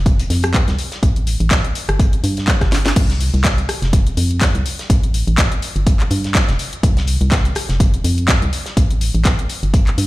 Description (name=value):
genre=piano house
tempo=124 BPM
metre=4/4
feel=swing 56% on 16ths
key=unclear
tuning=A4 = 440 Hz
part: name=organ-like FM bass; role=bass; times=0.0-10.1 s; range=F1 to G2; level=-18 LUFS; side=equal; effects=sidechain pumping
part: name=electronic kick drum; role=drums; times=0.1-9.8 s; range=none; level=-15 LUFS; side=equal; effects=overdrive
part: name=house drum kit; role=drums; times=0.1-10.1 s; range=crash cymbal, handclaps, hi-hat, rim click, snare drum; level=-22 LUFS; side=left 1 dB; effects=overdrive
part: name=warm soul drum kit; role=drums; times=0.1-10.1 s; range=hi-hat, snare drum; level=-31 LUFS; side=left 1 dB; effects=high-pass filter on hats, high-pass filter on snare, high-pass filter on room
room=studio ambience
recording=played on a big sound system in a bare room, large studio reverb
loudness=-14 LUFS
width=side -18 dB against mid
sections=0.0-3.0 A section; 3.0-10.1 B section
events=drum fill 2.7; drop 3.0-10.1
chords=none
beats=0.06 0.54 | 1.03 1.51 2.00 2.48 | 2.96 3.45 3.93 4.41 | 4.90 5.38 5.87 6.35 | 6.83 7.32 7.80 8.29 | 8.77 9.25 9.74